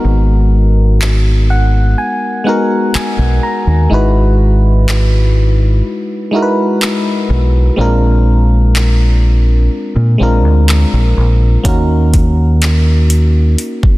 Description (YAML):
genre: contemporary R&B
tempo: 62 BPM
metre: 4/4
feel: straight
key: G# minor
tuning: A4 = 440 Hz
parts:
  - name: FM electric piano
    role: accompaniment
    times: 0.0-14.0 s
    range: G#3 to A#5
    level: -16 LUFS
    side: left 1 dB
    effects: chorus
  - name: deep dub fingered electric bass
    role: bass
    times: 0.0-13.5 s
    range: G#1 to A#2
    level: -10 LUFS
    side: equal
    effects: none
  - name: smooth R&B drum kit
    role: drums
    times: 1.0-14.0 s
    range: handclaps, hi-hat, kick drum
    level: -18 LUFS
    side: equal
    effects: none
room: digital ambience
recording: dense, heavily limited modern master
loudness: -9 LUFS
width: side -18 dB against mid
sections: 0.0-14.0 A section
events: break 0.0-11.7; FM electric piano fill 1.0-3.9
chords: 0.0 G#m9; 3.9 Emaj7/G#; 7.8 A#7; 11.7 D#m7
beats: | 0.04 1.00 1.97 2.94 | 3.91 4.88 5.84 6.81 | 7.78 8.75 9.71 10.68 | 11.65 12.62 13.59